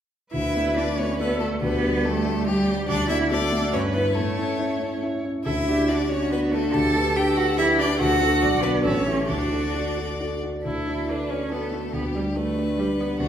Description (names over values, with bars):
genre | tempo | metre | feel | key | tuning
quick classical-period movement for piano quartet | 141 BPM | 3/4 | rubato | D major | A4 = 441 Hz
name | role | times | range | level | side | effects
clear violin | melody | 0.3-13.3 s | F#4 to A5 | -29 LUFS | left 6 dB | none
rich cello | second line | 0.3-13.3 s | G3 to A4 | -26 LUFS | right 3 dB | none
clear viola | accompaniment | 0.3-13.3 s | G3 to F#5 | -31 LUFS | right 2 dB | none
dark concert grand piano | accompaniment | 0.3-13.3 s | A1 to E5 | -24 LUFS | equal | none
room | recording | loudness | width
wet recital hall reverb, RT60 1.3 s | recorded in a church or concert hall | -21 LUFS | side -9 dB against mid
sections
0.3-10.6 A section; 10.6-13.3 A section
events
none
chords
0.3 D; 1.6 G/D; 2.9 D; 3.7 Em/G; 4.2 A; 5.5 D; 6.7 G/D; 8.0 D; 8.4 Bm; 8.8 A; 9.3 D; 11.9 G/D